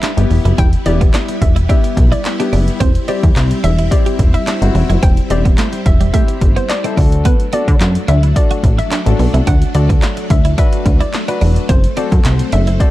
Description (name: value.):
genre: dance-pop.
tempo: 108 BPM.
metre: 4/4.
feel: straight.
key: unclear.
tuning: A4 = 437 Hz.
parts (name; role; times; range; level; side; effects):
hollow square pluck; melody; 0.0-12.9 s; B4 to G5; -24 LUFS; left 1 dB; chorus, dub echo.
string machine, violins; sustained chords; 0.0-12.9 s; F#3 to E4; -24 LUFS; equal; ensemble chorus, sidechain pumping.
twelve-string electric guitar; riff; 0.0-12.8 s; G3 to G4; -23 LUFS; right 6 dB; wide subtle chorus.
punchy analog drum machine; drums; 0.0-12.9 s; handclaps, hi-hat, kick drum, snare drum; -14 LUFS; equal; none.
impact; sound effects; 0.0-0.6 s; none; barely audible; none; none.
clear grand piano; accompaniment; 0.2-12.9 s; B3 to B4; -22 LUFS; left 6 dB; sidechain pumping.
plucky analog bass; bass; 0.2-12.8 s; E1 to D3; -13 LUFS; equal; sidechain pumping.
room: little or no reverb.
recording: dark, warm production.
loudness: -11 LUFS.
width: side -16 dB against mid.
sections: 0.0-12.9 A section.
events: impact 0.0-0.6.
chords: 0.0 Em; 2.8 C/E; 7.0 D; 11.7 F#dim.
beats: 0.03 | 0.58 1.14 1.69 2.25 | 2.81 3.36 3.92 4.47 | 5.03 5.58 6.14 6.69 | 7.25 7.81 8.36 8.92 | 9.47 10.03 10.58 11.14 | 11.69 12.25 12.81.